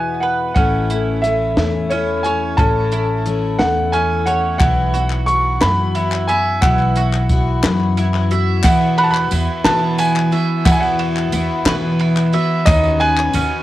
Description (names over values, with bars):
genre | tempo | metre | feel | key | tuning
indie folk with a building arrangement | 60 BPM (dotted quarters) | 6/8 | straight | E major | A4 = 442 Hz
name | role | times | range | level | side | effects
clear upright piano | melody | 0.0-13.6 s | C#5 to C#6 | -19 LUFS | right 1 dB | cassette tape, plate reverb
fingerpicked steel-string acoustic guitar | accompaniment | 0.0-4.6 s | E2 to A4 | -28 LUFS | left 5 dB | cassette tape, plate reverb
bowl-back mandolin | arpeggios | 0.0-13.6 s | B3 to E5 | -25 LUFS | right 6 dB | cassette tape, plate reverb, tape echo
picked twelve-string acoustic guitar | accompaniment | 0.6-13.6 s | E2 to F#4 | -22 LUFS | left 6 dB | cassette tape
upright bass | bass | 0.6-13.5 s | A1 to E3 | -18 LUFS | right 1 dB | none
compact cocktail drum kit | drums | 0.6-13.5 s | hi-hat, kick drum, ride cymbal, snare drum | -20 LUFS | equal | cassette tape
group handclap | percussion | 4.6-13.3 s | none | -26 LUFS | left 7 dB | none
tambourine | percussion | 8.6-13.5 s | none | -34 LUFS | right 8 dB | none
room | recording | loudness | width
light reverb | home recording on cassette | -14 LUFS | side -15 dB against mid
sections
0.6-8.6 A section; 8.6-13.6 B section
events
none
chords
0.0 E; 0.6 A; 4.6 Bsus4; 8.6 Esus2; 12.7 Badd9/D#